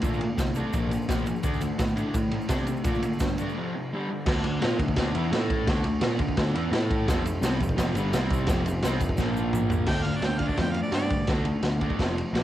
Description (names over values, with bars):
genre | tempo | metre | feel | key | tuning
garage rock duo or trio | 170 BPM | 4/4 | straight | D minor | A4 = 440 Hz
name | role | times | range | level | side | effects
raw garage guitar | riff | 0.0-12.4 s | F2 to Bb4 | -29 LUFS | left 1 dB | overdrive, spring reverb, cassette tape
fuzz picked electric bass | bass | 0.0-12.4 s | F1 to C3 | -29 LUFS | equal | overdrive
raw garage drum kit | drums | 0.0-12.4 s | crash cymbal, kick drum, ride cymbal, snare drum, toms | -27 LUFS | equal | cassette tape
egg shaker | percussion | 0.0-3.5, 7.1-9.8 s | none | -47 LUFS | right 5 dB | none
warm harmonica | melody | 9.9-11.3 s | D5 to G5 | -32 LUFS | right 1 dB | overdrive, cassette tape
room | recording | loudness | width
little or no reverb | home recording on cassette | -24 LUFS | side -13 dB against mid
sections
0.0-4.3 A section; 4.3-9.9 B section; 9.9-12.4 C section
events
break 3.6-4.3; drum fill 9.2-9.9; harmonica solo 9.9-12.4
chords
0.0 D5; 0.7 Bb5; 1.4 D5; 3.6 F5; 3.9 G5; 4.3 Dm; 5.3 A5; 5.7 Dm; 6.7 A5; 7.1 F5; 8.1 C5; 8.5 F5; 9.2 Bb5; 9.9 D5; 12.0 F5